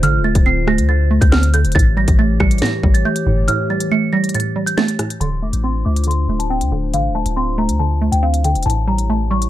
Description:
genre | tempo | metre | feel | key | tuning
hip hop, drill | 139 BPM | 4/4 | half-time | D minor | A4 = 436 Hz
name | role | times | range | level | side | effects
small celesta | melody | 0.0-9.5 s | F5 to C#7 | -22 LUFS | left 1 dB | low-pass filter, ping-pong delay
hollow square pluck | accompaniment | 0.0-9.5 s | A2 to C4 | -21 LUFS | right 4 dB | chorus, low-pass filter
dark analog pad | sustained chords | 0.0-9.5 s | D3 to C#5 | -25 LUFS | left 1 dB | wide subtle chorus, low-pass filter
long sustained 808-style bass | bass | 0.0-9.5 s | D1 to D2 | -17 LUFS | left 1 dB | none
drill drum kit | drums | 0.0-9.5 s | hi-hat, kick drum, rim click, snare drum | -17 LUFS | left 1 dB | none
room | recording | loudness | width
little or no reverb | dark, warm production | -14 LUFS | side -13 dB against mid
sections
0.0-5.2 A section; 5.2-9.5 B section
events
break 3.5-5.2; filter sweep 5.2-9.5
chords
0.0 Dm7; 1.8 A7; 5.2 Dm7; 8.7 A7

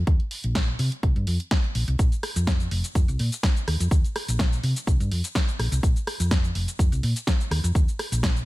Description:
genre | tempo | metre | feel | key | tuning
filtered disco house | 125 BPM | 4/4 | swing 53% on 16ths | unclear | A4 = 440 Hz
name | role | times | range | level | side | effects
hollow-body short-scale fingered electric bass | bass | 0.0-8.4 s | F1 to C3 | -25 LUFS | equal | sidechain pumping, low-pass filter
electronic kick drum | drums | 0.1-8.3 s | none | -22 LUFS | equal | small room ambience
punchy analog drum machine | drums | 0.1-8.5 s | cabasa, hi-hat, rim click, snare drum | -30 LUFS | equal | sidechain pumping on hats, small room ambience, sidechain pumping on perc
room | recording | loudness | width
little or no reverb | none | -22 LUFS | side -18 dB against mid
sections
0.0-8.5 A section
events
none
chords
none

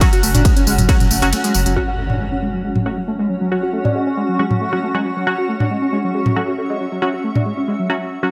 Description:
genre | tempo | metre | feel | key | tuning
driving peak-time techno | 137 BPM | 4/4 | straight | unclear | A4 = 439 Hz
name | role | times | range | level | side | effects
overdriven synth lead | riff | 0.0-7.9 s | F#3 to F#4 | -24 LUFS | equal | analog chorus, sidechain pumping, delay
wavetable chord stab | stabs | 0.0-8.3 s | F#3 to F#4 | -25 LUFS | equal | vintage 12-bit sampler grit, sidechain pumping, dub echo
overtone-sweeping drone | drone | 0.0-1.8 s | F#3 to C#4 | -34 LUFS | equal | chorus, built-in reverb, sidechain pumping
electronic kick drum | drums | 0.0-1.0 s | none | -16 LUFS | equal | small room ambience
techno drum kit | drums | 0.0-7.4 s | hi-hat, ride cymbal, tambourine, toms | -22 LUFS | equal | sidechain pumping on hats, small room ambience, sidechain pumping on toms, sidechain pumping on perc, sidechain pumping on cymbals
granular cloud pad | texture | 0.0-7.9 s | C#4 to F#6 | -25 LUFS | equal | built-in reverb, sidechain pumping
saturated sub bass | bass | 0.2-1.8 s | F#1 | -21 LUFS | equal | overdrive, sidechain pumping, low-pass filter
impact | sound effects | 1.8-3.5 s | none | -29 LUFS | equal | none
room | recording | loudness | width
moderate stone room reverb, RT60 1.3 s | none | -18 LUFS | mono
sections
0.0-1.8 A section; 1.8-8.3 B section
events
drop 0.0-1.8; break 1.3-1.8; impact 1.8-3.5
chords
0.0 F#5

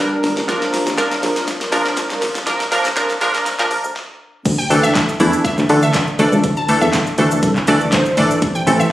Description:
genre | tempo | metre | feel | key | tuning
dance-pop | 121 BPM | 4/4 | straight | D minor | A4 = 441 Hz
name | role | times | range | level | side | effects
funky polysynth comp | accompaniment | 0.0-8.9 s | E3 to Bb4 | -17 LUFS | equal | chorus, sidechain pumping
sweeping resonant pad | sustained chords | 0.0-3.9 s | F3 to Bb4 | -28 LUFS | left 1 dB | chorus, sidechain pumping
solid FM bass | bass | 0.0-8.8 s | G1 to D3 | -19 LUFS | equal | sidechain pumping
pop drum kit | drums | 0.2-8.9 s | crash cymbal, handclaps, hi-hat, kick drum, shaker, snare drum | -21 LUFS | equal | none
group handclap | percussion | 1.0-8.0 s | none | -28 LUFS | left 2 dB | none
glassy wavetable pluck | melody | 4.6-8.9 s | C5 to A5 | -21 LUFS | equal | chorus, sidechain pumping, dub echo
room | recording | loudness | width
moderate digital room reverb, RT60 1.0 s | recorded on a phone in the room, studio reverb, high-pass filter | -14 LUFS | side -14 dB against mid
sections
0.0-4.5 A section; 4.5-8.9 B section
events
build-up 0.0-4.5; drum fill 0.0-4.0; stop 4.0-4.5; drop 4.5-8.9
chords
0.5 Bb; 4.5 Dsus2

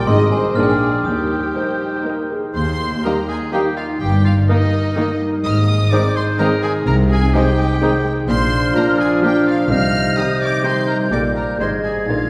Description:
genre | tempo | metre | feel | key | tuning
cinematic, playful, whimsical film cue | 126 BPM | 3/4 | straight | Eb major | A4 = 440 Hz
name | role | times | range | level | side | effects
glockenspiel with brass mallets | melody | 0.0-2.0 s | G5 to F6 | -28 LUFS | equal | none
bright oboe | second line | 0.0-12.3 s | Eb4 to G5 | -29 LUFS | equal | none
rich studio violin section | second line | 0.0-12.3 s | Bb3 to Eb5 | -30 LUFS | equal | none
dark French horn section | sustained chords | 0.0-12.3 s | F3 to G4 | -27 LUFS | equal | none
concert harp | arpeggios | 0.0-12.3 s | G2 to Bb5 | -26 LUFS | equal | none
warm studio violin section | melody | 0.1-12.3 s | G4 to F6 | -30 LUFS | equal | none
dark clarinet | second line | 0.1-12.3 s | G4 to Eb5 | -28 LUFS | equal | none
mellow small flute group | second line | 0.1-12.3 s | D5 to Ab6 | -29 LUFS | equal | none
mellow bassoon | accompaniment | 0.1-12.3 s | Ab2 to Bb3 | -28 LUFS | equal | none
rich studio viola section | accompaniment | 0.1-12.3 s | D3 to Eb4 | -30 LUFS | equal | none
dark studio cello section | bass | 0.1-12.3 s | Eb2 to C3 | -25 LUFS | equal | none
warm studio double bass section | bass | 0.1-12.3 s | G1 to Eb2 | -24 LUFS | equal | none
warm tuba | bass | 0.1-1.5 s | Ab1 to Eb2 | -27 LUFS | equal | none
room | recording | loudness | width
wet scoring stage reverb, RT60 2.2 s | heard from further back in the room | -17 LUFS | mono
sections
0.0-2.6 A section; 2.6-12.3 A section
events
none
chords
0.1 Ab; 0.6 Bb7; 1.1 Eb; 4.0 Eb/G; 5.4 Ab; 6.9 Ab/C; 8.3 Bb; 9.7 Cm; 11.1 Gm/Bb; 11.6 Ab

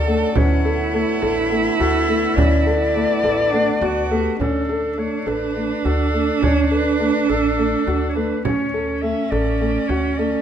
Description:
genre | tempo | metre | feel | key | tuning
contemporary instrumental, chamber music in an uneven meter | 208 BPM (eighths) | 7/8 | straight | D major | A4 = 445 Hz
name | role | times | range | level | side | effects
warm clarinet | melody | 0.0-10.4 s | G4 to E5 | -24 LUFS | left 3 dB | none
rich cello | second line | 0.0-10.4 s | C#4 to A4 | -22 LUFS | right 5 dB | none
hand-pumped harmonium | sustained chords | 0.0-4.4 s | C#3 to F#4 | -30 LUFS | left 1 dB | none
upright bass | bass | 0.0-10.3 s | A1 to D2 | -23 LUFS | equal | none
felt-muted upright piano | arpeggios | 0.1-10.4 s | A3 to A4 | -23 LUFS | left 2 dB | none
frame drum | percussion | 0.4-10.2 s | none | -29 LUFS | right 5 dB | none
room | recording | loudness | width
light reverb | none | -17 LUFS | side -9 dB against mid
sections
0.0-4.4 A section; 4.4-10.4 B section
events
none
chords
0.0 Dmaj7; 4.4 Dmaj7(no3)

